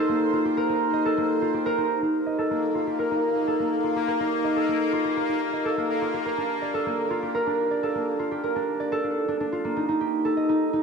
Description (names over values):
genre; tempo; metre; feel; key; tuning
IDM; 124 BPM; 4/4; straight; Eb lydian; A4 = 440 Hz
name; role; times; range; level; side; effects
concert harp; arpeggios; 0.0-10.8 s; Bb3 to Eb5; -23 LUFS; right 1 dB; vintage 12-bit sampler grit, low-pass filter, ping-pong delay
bubbling stepped-filter texture; texture; 0.0-8.8 s; Bb3 to C5; -32 LUFS; left 4 dB; chorus, built-in reverb
room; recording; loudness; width
wet plate reverb, RT60 2.5 s; none; -23 LUFS; side -5 dB against mid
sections
0.0-2.0 A section; 2.0-9.8 B section; 9.8-10.8 A section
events
filter sweep on harp 2.0-9.8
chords
0.0 Bbsus2; 5.9 Gm; 9.8 Eb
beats
| 0.09 0.57 1.06 1.54 | 2.02 2.51 2.99 3.48 | 3.96 4.44 4.93 5.41 | 5.89 6.38 6.86 7.35 | 7.83 8.31 8.80 9.28 | 9.77 10.25 10.73